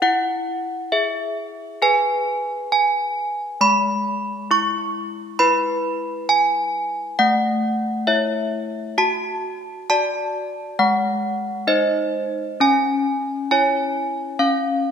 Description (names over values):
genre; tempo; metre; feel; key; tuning
classical, tune for handbells; 67 BPM; 4/4; straight; E major, C# minor from 7.2 s; A4 = 440 Hz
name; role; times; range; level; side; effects
desk bells; solo; 0.0-14.9 s; G#3 to C#6; -18 LUFS; equal; none
room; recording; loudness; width
wet concert hall reverb, RT60 2.3 s; minimal, uncompressed stereo recording; -18 LUFS; side -7 dB against mid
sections
0.0-14.9 A section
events
none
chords
0.0 E; 3.6 E/G#; 7.2 A; 9.0 D/F#; 10.8 G#7; 12.6 C#m; 14.4 C#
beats
| 0.02 0.93 1.82 2.71 | 3.61 4.50 5.39 6.29 | 7.18 8.06 8.99 9.89 | 10.78 11.68 12.61 13.51 | 14.40